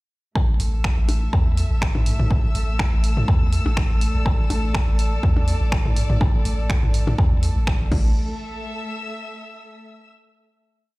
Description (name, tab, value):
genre	minimal techno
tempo	123 BPM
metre	4/4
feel	swing 54% on 16ths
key	unclear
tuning	A4 = 440 Hz
part	electronic kick drum	drums	0.4-8.0 s	none	-21 LUFS	equal	none
part	electronic percussion blips and toms	percussion	0.4-8.0 s	none	-27 LUFS	left 1 dB	ping-pong delay
part	dark chamber string section	texture	0.4-10.1 s	A3 to E6	-30 LUFS	left 1 dB	sidechain pumping
part	punchy sub bass	bass	0.6-8.1 s	G1 to E2	-22 LUFS	equal	sidechain pumping
part	punchy analog drum machine	drums	0.6-8.0 s	crash cymbal, finger snaps, hi-hat	-32 LUFS	right 1 dB	none
room	little or no reverb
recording	played on a big sound system in a bare room, large studio reverb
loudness	-18 LUFS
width	side -22 dB against mid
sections	0.4-8.2 groove; 8.2-10.1 final note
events	none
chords	0.4 A5; 7.9 N.C.; 8.2 A5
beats	| 0.35 0.84 1.33 1.82 | 2.31 2.79 3.28 3.77 | 4.26 4.75 5.23 5.72 | 6.21 6.70 7.18 7.67 | 8.16 8.65 9.13 9.62